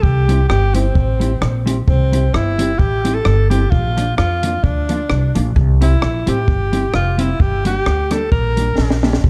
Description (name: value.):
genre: ska.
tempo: 130 BPM.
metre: 4/4.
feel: swing 55% on 8ths.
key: C mixolydian.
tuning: A4 = 440 Hz.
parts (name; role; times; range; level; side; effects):
breathy tenor saxophone; melody; 0.0-9.0 s; C4 to Bb4; -23 LUFS; equal; tape echo.
upright bass; bass; 0.0-9.3 s; F1 to F2; -19 LUFS; equal; none.
compact cocktail drum kit; drums; 0.0-9.3 s; hi-hat, kick drum, rim click, snare drum; -21 LUFS; equal; none.
mellow electric guitar; accompaniment; 0.3-9.1 s; F3 to G4; -24 LUFS; equal; subtle chorus.
room: small room ambience.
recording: dark, warm production.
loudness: -16 LUFS.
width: mono.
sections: 0.0-1.9 A section; 1.9-9.3 A section.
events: drum fill 8.8-9.2.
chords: 0.0 C; 3.7 Bb; 5.6 C; 7.4 Gm.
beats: | 0.03 0.49 0.95 1.42 | 1.88 2.34 2.80 3.26 | 3.72 4.18 4.64 5.10 | 5.56 6.02 6.48 6.94 | 7.40 7.86 8.32 8.78 | 9.24.